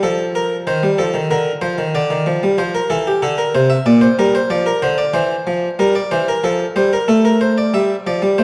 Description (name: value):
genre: classical, baroque-style two-part invention for harpsichord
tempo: 94 BPM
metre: 4/4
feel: straight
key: unclear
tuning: A4 = 441 Hz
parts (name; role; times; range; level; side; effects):
- harpsichord; solo; 0.0-8.4 s; Bb2 to E5; -16 LUFS; equal; none
room: wet scoring stage reverb, RT60 2.0 s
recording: dark, warm production, vinyl crackle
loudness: -16 LUFS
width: mono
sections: 0.0-7.7 A section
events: none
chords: 0.0 F7; 1.3 Bb/D; 2.6 F; 3.9 Gm7/Bb; 5.1 C7/E; 6.4 F; 7.7 A7(no3) (rootless)